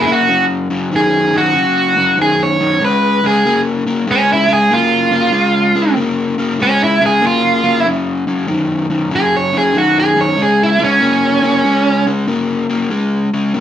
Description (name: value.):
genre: blues.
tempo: 95 BPM.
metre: 4/4.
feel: swing 67% on 8ths.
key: Db major.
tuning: A4 = 439 Hz.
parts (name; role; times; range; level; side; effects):
overdriven electric guitar; melody; 0.0-12.0 s; Db4 to Db5; -12 LUFS; right 2 dB; none.
overdriven semi-hollow guitar; riff; 0.0-13.6 s; Gb2 to Bb3; -15 LUFS; left 2 dB; none.
room: wet studio reverb, RT60 0.5 s.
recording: band playing live in one room.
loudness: -11 LUFS.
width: side -10 dB against mid.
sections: 0.0-13.6 A section.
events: overdriven electric guitar solo 0.0-13.6.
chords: 0.3 Gb5; 2.8 Db; 7.9 Gb5; 10.4 Db5.